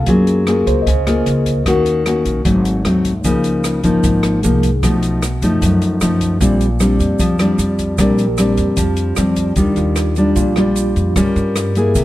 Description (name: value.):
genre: bossa nova.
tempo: 152 BPM.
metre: 4/4.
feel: straight.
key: unclear.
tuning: A4 = 442 Hz.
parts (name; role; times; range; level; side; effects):
bright tine electric piano; accompaniment; 0.0-1.7, 4.4-11.2 s; F4 to Eb5; -25 LUFS; right 3 dB; medium stereo tremolo.
nylon-string guitar; accompaniment; 0.0-12.0 s; F#2 to Bb4; -14 LUFS; left 1 dB; none.
upright bass; bass; 0.0-12.0 s; Ab1 to G2; -20 LUFS; right 1 dB; none.
open jazz drum kit; drums; 0.1-12.0 s; hi-hat, kick drum, rim click; -22 LUFS; equal; none.
tube shaker; percussion; 3.2-12.0 s; none; -31 LUFS; right 9 dB; none.
room: little or no reverb.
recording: none.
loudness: -13 LUFS.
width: side -15 dB against mid.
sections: 0.0-9.6 A section; 9.6-12.0 B section.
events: none.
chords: 0.1 Gbmaj9; 1.7 Ebm7; 2.5 Ab7b9; 3.2 Db69; 4.8 B7#11; 6.4 Bb69; 9.6 Ebmaj9; 11.2 Gm7b5.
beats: | 0.07 0.47 0.87 1.26 | 1.66 2.06 2.45 2.85 | 3.24 3.64 4.04 4.43 | 4.83 5.22 5.62 6.01 | 6.41 6.80 7.20 7.59 | 7.99 8.39 8.78 9.18 | 9.57 9.97 10.36 10.76 | 11.16 11.55 11.95.